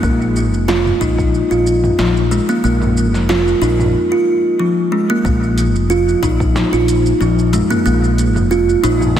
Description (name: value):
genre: organic downtempo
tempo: 92 BPM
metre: 4/4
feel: swing 54% on 16ths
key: unclear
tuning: A4 = 440 Hz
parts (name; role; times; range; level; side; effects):
- kalimba; arpeggios; 0.0-9.2 s; F3 to F4; -14 LUFS; right 1 dB; diffuse ambient delay
- fretless electric bass; bass; 0.0-9.2 s; F1 to Bb1; -17 LUFS; left 1 dB; tube saturation, ensemble chorus, sidechain pumping
- deep house drum kit; drums; 0.0-9.2 s; hi-hat, shaker, snare drum, toms; -24 LUFS; equal; overdrive
- electronic kick drum; drums; 0.0-1.3, 5.2-9.2 s; none; -19 LUFS; left 1 dB; overdrive
room: moderate lush hall reverb, RT60 2.8 s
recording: dreamy mix soaked in reverb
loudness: -12 LUFS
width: side -10 dB against mid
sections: 0.0-5.2 A section; 5.2-9.2 B section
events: none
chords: 0.0 Bb5